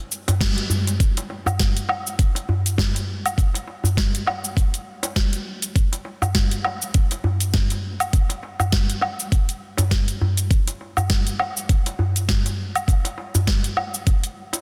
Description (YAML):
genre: downtempo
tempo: 101 BPM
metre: 4/4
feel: swing 56% on 16ths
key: none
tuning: none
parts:
  - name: afro-pop drum kit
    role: drums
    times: 0.1-14.6 s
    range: cabasa, hi-hat, snare drum, woodblock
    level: -28 LUFS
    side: equal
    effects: none
  - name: darbuka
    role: percussion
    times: 0.3-14.6 s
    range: none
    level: -27 LUFS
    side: equal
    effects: none
  - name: electronic kick drum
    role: drums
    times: 0.4-14.2 s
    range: none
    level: -22 LUFS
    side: equal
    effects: none
room: moderate lush hall reverb, RT60 2.7 s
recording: dense, heavily limited modern master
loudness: -22 LUFS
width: mono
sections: 0.0-1.0 A section; 1.0-14.6 B section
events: band accent 0.4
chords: none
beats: 0.41 | 1.00 1.60 2.19 2.78 | 3.38 3.97 4.57 5.16 | 5.75 6.35 6.94 7.54 | 8.13 8.72 9.32 9.91 | 10.51 11.10 11.70 12.29 | 12.88 13.48 14.07